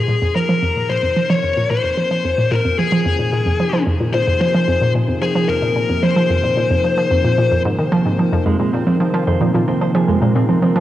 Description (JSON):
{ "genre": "ambient, sequencer-driven space music", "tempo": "111 BPM", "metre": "4/4", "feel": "straight", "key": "F minor", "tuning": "A4 = 438 Hz", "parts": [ { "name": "fuzz lead guitar", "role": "melody", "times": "0.0-7.6 s", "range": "Ab4 to Db5", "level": "-19 LUFS", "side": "left 4 dB", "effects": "distortion, cassette tape, ping-pong delay" }, { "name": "lush unison pad", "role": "sustained chords", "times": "0.0-10.8 s", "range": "C3 to Bb4", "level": "-23 LUFS", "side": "equal", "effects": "chorus, cassette tape" }, { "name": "hollow square pluck", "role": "riff", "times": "0.0-10.8 s", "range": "F2 to F3", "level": "-17 LUFS", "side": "right 1 dB", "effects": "chorus, cassette tape, ping-pong delay" }, { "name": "mellow electric guitar", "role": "arpeggios", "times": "8.5-10.8 s", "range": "F3 to C5", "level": "-21 LUFS", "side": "moving between left 2 dB and right 6 dB", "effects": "auto-pan, cassette tape, ping-pong delay" } ], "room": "wet spring reverb, RT60 2.1 s", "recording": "home recording on cassette", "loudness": "-14 LUFS", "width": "side -13 dB against mid", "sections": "0.0-10.8 A section", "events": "fade-in on analog synth pad 0.0-10.8", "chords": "0.0 Fm" }